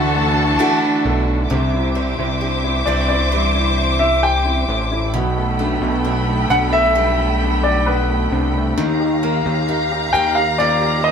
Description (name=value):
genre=pop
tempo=66 BPM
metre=4/4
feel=straight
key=unclear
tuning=A4 = 441 Hz
part: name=clear baby grand piano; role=melody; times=0.0-11.1 s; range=B4 to G5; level=-19 LUFS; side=left 1 dB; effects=none
part: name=warm studio violin section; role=second line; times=0.0-1.5 s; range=A4 to A5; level=-21 LUFS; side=left 2 dB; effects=none
part: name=clear baby grand piano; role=accompaniment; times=0.0-11.1 s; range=B2 to C5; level=-23 LUFS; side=left 3 dB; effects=none
part: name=warm studio string section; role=sustained chords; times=0.0-11.1 s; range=E3 to D6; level=-22 LUFS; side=equal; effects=none
part: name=picked steel-string acoustic guitar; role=arpeggios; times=0.0-11.1 s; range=B2 to G4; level=-26 LUFS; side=right 3 dB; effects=none
part: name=fat analog bass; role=bass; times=0.0-11.1 s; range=A1 to Eb2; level=-20 LUFS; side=equal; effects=none
room=wet small room reverb, RT60 0.5 s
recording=band playing live in one room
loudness=-15 LUFS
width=side -7 dB against mid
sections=0.0-1.5 A section; 1.5-11.1 B section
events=none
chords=0.0 Dadd9; 1.5 Cadd9; 5.1 Gadd9/B; 8.8 Ebadd9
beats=0.60 | 1.51 2.42 3.32 4.23 | 5.14 6.05 6.96 7.87 | 8.78 9.69 10.60